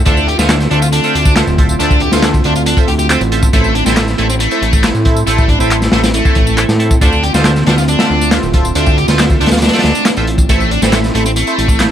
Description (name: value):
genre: breakbeat, breaks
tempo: 138 BPM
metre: 4/4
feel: straight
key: unclear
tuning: A4 = 441 Hz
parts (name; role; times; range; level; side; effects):
- warbly tape-like pad; sustained chords; 0.0-11.9 s; D3 to F4; -20 LUFS; right 2 dB; chorus, built-in reverb, sidechain pumping
- fat analog bass; bass; 0.0-11.9 s; D1 to A2; -15 LUFS; equal; none
- overdriven electric guitar; riff; 0.1-11.8 s; A3 to G4; -17 LUFS; left 1 dB; tube saturation, ping-pong delay
- band-passed chord stab; stabs; 0.1-11.9 s; E4 to E5; -20 LUFS; right 2 dB; phaser, analog chorus, ping-pong delay
- crunchy breakbeat drum kit; drums; 0.1-11.9 s; hi-hat, kick drum, snare drum; -14 LUFS; equal; none
- electronic tambourine and handclaps; drums; 0.1-11.9 s; none; -22 LUFS; equal; overdrive
room: small room ambience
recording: vinyl crackle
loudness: -9 LUFS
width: side -10 dB against mid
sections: 0.0-11.9 A section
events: none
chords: 0.1 Dm7; 3.5 Am; 7.0 Dm7; 10.5 Am